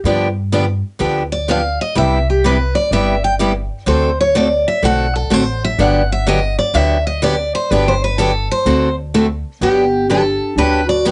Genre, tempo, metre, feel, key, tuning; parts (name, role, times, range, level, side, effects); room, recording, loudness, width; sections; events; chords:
acoustic string swing (jazz manouche); 125 BPM; 4/4; swing 64% on 8ths; G major; A4 = 440 Hz
upright bass; bass; 0.0-11.1 s; G1 to G2; -22 LUFS; equal
picked steel-string acoustic guitar; accompaniment; 0.1-11.1 s; C3 to A4; -18 LUFS; equal; cassette tape
picked steel-string acoustic guitar; melody; 1.3-11.1 s; G4 to G5; -19 LUFS; equal; cassette tape
breathy clarinet; second line; 9.6-11.1 s; B3 to F#4; -22 LUFS; equal; cassette tape
moderate studio ambience, RT60 0.5 s; home recording on cassette, nothing above 11.0 kHz; -16 LUFS; mono
0.0-9.6 A section; 9.6-11.1 B section
steel-string acoustic guitar solo 0.0-9.6
0.0 G7; 2.0 Cmaj7; 3.9 D7; 5.8 Gmaj7; 8.7 D7; 9.6 Gmaj7